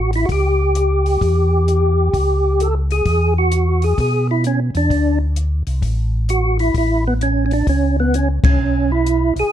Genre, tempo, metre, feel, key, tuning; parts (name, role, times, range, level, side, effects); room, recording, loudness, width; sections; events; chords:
soul jazz organ trio; 130 BPM; 4/4; swing 66% on 8ths; A mixolydian; A4 = 440 Hz
percussive tonewheel organ; melody; 0.0-9.5 s; B3 to A4; -18 LUFS; right 1 dB; slow rotary speaker, overdrive, chorus vibrato, plate reverb
mellow tonewheel organ; bass; 0.0-9.4 s; A1 to B2; -17 LUFS; equal; slow rotary speaker
compact cocktail drum kit; drums; 0.1-9.4 s; hi-hat, kick drum, ride cymbal; -20 LUFS; left 2 dB
light reverb; dark, warm production; -15 LUFS; side -10 dB against mid
0.0-9.5 A section
band accent 8.4
0.0 A7; 3.1 Esus2; 4.9 D5; 6.7 A; 8.6 E6/B